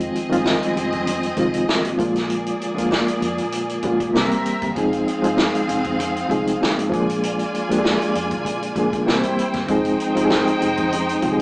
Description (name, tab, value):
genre	lush 1970s-style soul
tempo	98 BPM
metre	4/4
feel	swing 54% on 16ths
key	F dorian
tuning	A4 = 441 Hz
part	rich studio string section	second line	0.0-11.4 s	Bb3 to Ab5	-24 LUFS	equal	none
part	bright reed electric piano	accompaniment	0.0-11.4 s	D3 to Ab4	-20 LUFS	equal	fast tremolo
part	vintage muted fingered electric bass	bass	0.0-11.4 s	F1 to Bb2	-35 LUFS	equal	none
part	vintage drum kit	drums	0.0-11.4 s	hi-hat, kick drum, snare drum	-25 LUFS	equal	none
part	congas	percussion	0.1-11.4 s	none	-34 LUFS	equal	none
room	wet studio reverb, RT60 0.6 s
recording	band playing live in one room, small speaker sound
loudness	-18 LUFS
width	side -26 dB against mid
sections	0.0-11.4 A section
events	none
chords	0.0 Fm7; 2.0 Bb7; 4.1 C7; 4.8 Fm7; 6.9 Bb7; 9.1 C7; 9.7 Fm7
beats	0.45 1.07 1.68 | 2.30 2.91 3.53 4.14 | 4.76 5.37 5.99 6.60 | 7.22 7.84 8.45 9.07 | 9.69 10.30 10.92